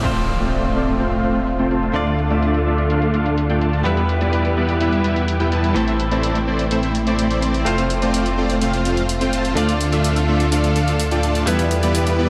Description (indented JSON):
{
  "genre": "EDM, festival progressive house",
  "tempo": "126 BPM",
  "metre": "4/4",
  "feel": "straight",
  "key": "unclear",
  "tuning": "A4 = 442 Hz",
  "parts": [
    { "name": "direct-recorded clean electric guitar", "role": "accompaniment", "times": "0.0-12.3 s", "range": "A2 to D5", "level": "-27 LUFS", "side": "equal", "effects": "delay" },
    { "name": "clear symphonic string section", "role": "sustained chords", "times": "0.0-12.3 s", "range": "D3 to B4", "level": "-27 LUFS", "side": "equal", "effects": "low-pass filter" },
    { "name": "dense compressed supersaw", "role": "riff", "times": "0.0-12.3 s", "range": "G3 to A5", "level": "-23 LUFS", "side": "equal", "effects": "cassette tape, low-pass filter, delay" },
    { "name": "detuned saw bass", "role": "bass", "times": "0.0-12.3 s", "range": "F1 to E2", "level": "-24 LUFS", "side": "equal", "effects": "none" },
    { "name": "house drum kit", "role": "drums", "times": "0.0-12.2 s", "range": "crash cymbal, hi-hat", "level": "-33 LUFS", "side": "equal", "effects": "low-pass filter on hats, studio reverb, low-pass filter on cymbals, low-pass filter on perc, low-pass filter on snare, low-pass filter on toms" },
    { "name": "impact", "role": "sound effects", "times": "0.0-1.9 s", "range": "none", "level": "-29 LUFS", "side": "equal", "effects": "none" }
  ],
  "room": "wet huge ambient reverb, RT60 7.4 s",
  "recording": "dreamy mix soaked in reverb",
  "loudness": "-19 LUFS",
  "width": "mono",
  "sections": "0.0-12.3 A section",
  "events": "impact 0.0-1.9; filter sweep on drum 0.0-12.3; filter sweep on supersaw synth 0.0-12.3; filter sweep on string section 0.0-12.3",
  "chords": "0.0 F; 1.9 Dm; 3.9 Em; 5.8 Am; 7.7 F; 9.6 Dm; 11.5 Em"
}